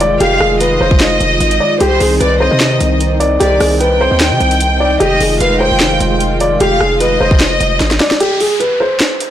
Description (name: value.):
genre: hip hop, trap.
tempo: 150 BPM.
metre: 4/4.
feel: half-time.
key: unclear.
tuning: A4 = 440 Hz.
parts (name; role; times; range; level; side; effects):
dark baby grand piano; melody; 0.0-9.3 s; G4 to D5; -15 LUFS; equal; digital delay.
dark analog pad; sustained chords; 0.0-8.2 s; Eb3 to F4; -19 LUFS; equal; chorus.
hard-hitting 808-style bass; bass; 0.0-8.0 s; F1 to C3; -16 LUFS; equal; none.
trap drum kit; drums; 0.0-9.3 s; handclaps, hi-hat, kick drum, rim click, snare drum; -15 LUFS; equal; none.
warm studio violin section; second line; 0.2-8.2 s; C5 to G5; -16 LUFS; equal; digital delay.
downlifter; sound effects; 8.2-9.3 s; none; -21 LUFS; equal; none.
room: light reverb, digital ambience.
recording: blown-out, overdriven recording, overdrive.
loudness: -10 LUFS.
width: side -11 dB against mid.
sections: 0.0-8.2 A section; 8.2-9.3 B section.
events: drum fill 7.8-8.2; break 8.2-9.3.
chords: 0.0 Fm7; 1.8 Cmadd9; 5.0 Fm7; 8.2 N.C..